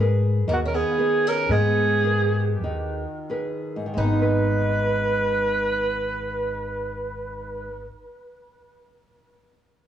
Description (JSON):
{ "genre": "fado-style ballad", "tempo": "41-65 BPM", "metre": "2/4", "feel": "rubato", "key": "G# minor", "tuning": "A4 = 440 Hz", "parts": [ { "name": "nylon-string guitar", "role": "accompaniment", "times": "0.0-8.1 s", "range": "G#2 to B4", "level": "-28 LUFS", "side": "left 2 dB", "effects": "none" }, { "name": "upright bass", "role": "bass", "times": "0.0-7.9 s", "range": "G#1 to G#2", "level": "-25 LUFS", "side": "left 2 dB", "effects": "transformer saturation" }, { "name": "breathy alto saxophone", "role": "melody", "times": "0.5-7.9 s", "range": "F#4 to B4", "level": "-24 LUFS", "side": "right 3 dB", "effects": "analog delay" }, { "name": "picked twelve-string acoustic guitar", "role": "second line", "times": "0.5-7.9 s", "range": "A#3 to D#4", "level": "-31 LUFS", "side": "right 4 dB", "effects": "none" } ], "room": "moderate studio ambience, RT60 0.5 s", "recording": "worn, warbling old tape, cassette tape, warbly pitch drift, small room ambience", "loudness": "-21 LUFS", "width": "side -10 dB against mid", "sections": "0.0-4.0 A section; 4.0-9.7 B section", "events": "slowing down 0.0-4.0", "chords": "0.0 G#madd9; 4.0 G#m", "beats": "0.49 | 1.50 2.63 | 3.98 5.42 | 6.83" }